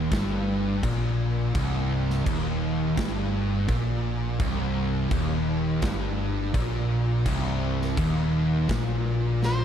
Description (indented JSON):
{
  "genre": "stoner and doom metal",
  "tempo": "84 BPM",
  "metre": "4/4",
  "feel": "straight",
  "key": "C minor",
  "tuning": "A4 = 443 Hz",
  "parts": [
    { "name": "heavy high-gain guitar", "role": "riff", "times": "0.0-9.6 s", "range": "C2 to Bb2", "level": "-34 LUFS", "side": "equal", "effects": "distortion" },
    { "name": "thick fuzz guitar", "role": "riff", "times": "0.0-9.6 s", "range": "C2 to Bb2", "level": "-28 LUFS", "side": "left 7 dB", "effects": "distortion" },
    { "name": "thick fuzz guitar", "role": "riff", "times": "0.0-9.6 s", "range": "C2 to Bb2", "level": "-29 LUFS", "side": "right 7 dB", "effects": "distortion" },
    { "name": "hollow-body short-scale fingered electric bass", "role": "bass", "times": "0.0-9.6 s", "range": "C1 to Bb1", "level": "-30 LUFS", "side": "equal", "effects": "overdrive" },
    { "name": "big rock drum kit", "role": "drums", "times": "0.1-9.6 s", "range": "crash cymbal, kick drum, snare drum", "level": "-31 LUFS", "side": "equal", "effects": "none" },
    { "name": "octave-fuzz lead guitar", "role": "melody", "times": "9.5-9.6 s", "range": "C5", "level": "-28 LUFS", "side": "equal", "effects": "distortion" }
  ],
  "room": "light reverb, studio reverb",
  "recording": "dark, warm production",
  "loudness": "-23 LUFS",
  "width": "side -9 dB against mid",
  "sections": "0.0-9.6 A section",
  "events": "drum fill 9.4",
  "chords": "0.0 Cm"
}